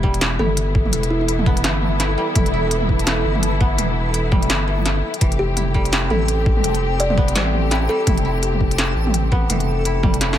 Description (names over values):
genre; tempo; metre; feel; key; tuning
half-time drum and bass; 168 BPM; 4/4; swing 59% on 16ths, half-time; E phrygian; A4 = 439 Hz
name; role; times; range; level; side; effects
muted studio string section; sustained chords; 0.0-10.4 s; E3 to G4; -26 LUFS; left 2 dB; sidechain pumping
koto; arpeggios; 0.0-10.4 s; E3 to E4; -29 LUFS; equal; dub echo
saturated sub bass; bass; 0.0-10.4 s; E1 to A1; -21 LUFS; equal; none
electronic kick drum; drums; 0.0-10.1 s; none; -18 LUFS; equal; overdrive
backwards swelling texture; texture; 0.9-10.4 s; A4; -29 LUFS; right 1 dB; built-in reverb
industrial drum kit; drums; 0.1-10.4 s; hi-hat, snare drum, toms; -22 LUFS; right 1 dB; none
kalimba; melody; 0.4-1.3, 5.4-8.4 s; E4 to D5; -26 LUFS; equal; ping-pong delay
room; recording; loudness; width
little or no reverb; none; -16 LUFS; side -11 dB against mid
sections
0.0-10.4 A section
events
drum fill 10.2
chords
0.0 Em; 5.2 F